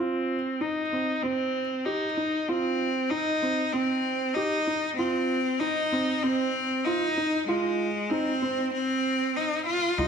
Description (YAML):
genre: piano and strings electronica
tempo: 96 BPM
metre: 4/4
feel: straight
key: F minor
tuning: A4 = 439 Hz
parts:
  - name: clear cello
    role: melody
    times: 0.0-10.1 s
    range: Ab3 to F4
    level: -26 LUFS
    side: equal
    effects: low-pass filter
  - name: felt-muted upright piano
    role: riff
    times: 0.0-10.1 s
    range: C4 to G4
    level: -29 LUFS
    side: right 2 dB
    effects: ping-pong delay
  - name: dark detuned saw bass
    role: bass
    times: 10.0-10.1 s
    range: C2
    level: -29 LUFS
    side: left 1 dB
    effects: none
room: moderate recital hall reverb, RT60 1.5 s, small room reverb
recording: none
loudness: -25 LUFS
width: side -6 dB against mid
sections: 0.0-10.0 A section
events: build-up 0.0-10.0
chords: 0.0 Cm; 5.0 F7(no3)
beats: 0.61 1.23 1.86 | 2.48 3.11 3.73 4.36 | 4.98 5.61 6.23 6.86 | 7.48 8.11 8.73 9.36 | 9.98